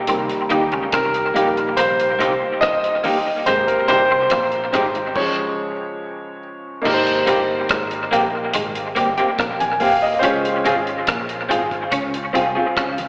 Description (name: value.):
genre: lovers rock reggae.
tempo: 71 BPM.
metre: 4/4.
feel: straight.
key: Ab major.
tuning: A4 = 440 Hz.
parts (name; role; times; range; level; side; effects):
warm concert grand piano; accompaniment; 0.0-13.1 s; C3 to Ab5; -22 LUFS; equal; dub echo, slapback echo.
twangy electric guitar; riff; 0.1-13.0 s; G3 to Eb4; -28 LUFS; equal; ensemble chorus, dub echo, slapback echo.
vintage muted fingered electric bass; bass; 0.1-13.1 s; G1 to Eb2; -37 LUFS; equal; none.
deep reggae drum kit; drums; 0.1-13.1 s; crash cymbal, hi-hat, kick drum, rim click; -28 LUFS; equal; dub echo.
congas; percussion; 0.1-13.1 s; none; -40 LUFS; equal; none.
electric guitar through a small old amp; stabs; 0.5-12.6 s; Bb3 to Ab4; -25 LUFS; equal; harmonic tremolo, dub echo, slapback echo.
room: moderate lush hall reverb, RT60 2.1 s.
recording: live gig heard through the venue's PA, recital hall reverb, AM radio sound.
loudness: -19 LUFS.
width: mono.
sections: 0.0-6.8 A section; 6.8-13.1 B section.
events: grand piano solo 0.0-6.8; stop 5.2-6.8.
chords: 0.1 Cm7; 3.5 Abmaj7; 5.2 Db; 6.8 Abmaj9; 10.2 Dbmaj7.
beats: | 0.08 0.93 1.77 2.62 | 3.47 4.31 5.16 6.00 | 6.85 7.70 8.54 9.39 | 10.23 11.08 11.92 12.77.